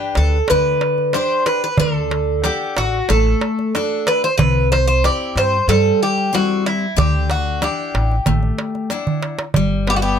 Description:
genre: greek folk, Greek bouzouki band.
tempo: 93 BPM.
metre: 4/4.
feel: straight.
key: unclear.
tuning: A4 = 440 Hz.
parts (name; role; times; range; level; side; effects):
Greek bouzouki; melody; 0.0-10.2 s; E4 to D5; -18 LUFS; right 1 dB; none.
picked steel-string acoustic guitar; accompaniment; 0.0-10.2 s; C3 to F#5; -22 LUFS; left 5 dB; none.
upright bass; bass; 0.2-10.2 s; G1 to G2; -19 LUFS; equal; none.
darbuka; percussion; 0.2-10.0 s; none; -20 LUFS; right 4 dB; none.
clear violin; second line; 9.9-10.2 s; A3 to B3; -22 LUFS; left 5 dB; none.
room: light reverb.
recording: close, detailed microphones.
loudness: -15 LUFS.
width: side -8 dB against mid.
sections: 0.0-10.2 A section.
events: drum fill 9.1-9.6.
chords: 0.0 G; 1.8 D; 4.4 C; 7.0 Dadd9; 9.6 G.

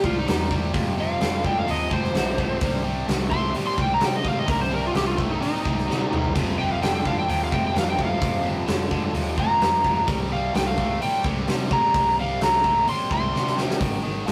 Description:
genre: blues rock power trio and southern rock.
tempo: 129 BPM.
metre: 4/4.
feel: straight.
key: C minor.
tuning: A4 = 440 Hz.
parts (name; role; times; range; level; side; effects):
overdriven slide guitar; melody; 0.0-13.6 s; Eb4 to C6; -26 LUFS; equal; none.
biting overdriven guitar; riff; 0.0-14.3 s; F2 to A3; -30 LUFS; equal; none.
vintage muted fingered electric bass; bass; 0.0-14.3 s; F1 to C3; -33 LUFS; equal; none.
huge arena drum kit; drums; 0.0-14.3 s; crash cymbal, hi-hat, kick drum, snare drum, toms; -28 LUFS; equal; none.
room: light reverb.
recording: rough rehearsal-room recording, warm saturation.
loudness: -23 LUFS.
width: mono.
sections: 0.0-14.3 A section.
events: electric slide guitar solo 0.0-14.3; drum fill 5.9-6.3, 13.3-13.8.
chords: 0.0 C5; 0.7 F5; 2.6 Cm; 6.3 F5; 10.1 C5; 13.8 Ab5.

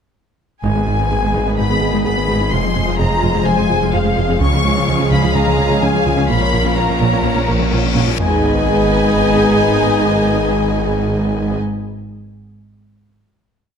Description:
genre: cinematic, hybrid orchestral and electronic film score.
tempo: 127 BPM.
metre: 4/4.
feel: straight.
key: G# dorian.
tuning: A4 = 440 Hz.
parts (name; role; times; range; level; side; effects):
rich symphonic violin section; melody; 0.6-11.6 s; F5 to C#6; -21 LUFS; left 3 dB; none.
clear symphonic violin section; second line; 0.6-11.6 s; G#4 to E#5; -24 LUFS; left 1 dB; none.
rich symphonic viola section; accompaniment; 0.6-11.6 s; G#3 to G#4; -24 LUFS; right 1 dB; none.
clear trombone section; sustained chords; 0.6-11.6 s; D#3 to A#3; -24 LUFS; right 5 dB; none.
mellow French horn section; sustained chords; 0.6-11.6 s; Ab3 to G#4; -24 LUFS; left 6 dB; none.
warm analog pad; sustained chords; 0.6-11.6 s; F3 to D#5; -24 LUFS; equal; chorus.
thumb-piano-like synth pluck; arpeggios; 0.6-8.1 s; C#3 to A#4; -24 LUFS; left 4 dB; chorus, tape echo.
detuned saw bass; bass; 0.6-11.6 s; F1 to C#2; -22 LUFS; equal; none.
rich symphonic double bass section; bass; 0.6-11.6 s; F1 to C#2; -23 LUFS; right 4 dB; none.
warm symphonic cello section; bass; 0.6-11.6 s; F2 to C#3; -22 LUFS; right 2 dB; none.
reverse cymbal and sub drop; sound effects; 6.7-10.1 s; none; -24 LUFS; left 2 dB; none.
room: light reverb.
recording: none.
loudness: -13 LUFS.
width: side -7 dB against mid.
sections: 0.6-8.2 theme; 8.2-12.0 final chord.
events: reverse cymbal 6.7-8.2; impact 8.2-10.1.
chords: 0.6 G#m; 2.5 Fm; 4.4 C#; 6.3 A#m; 8.2 G#m.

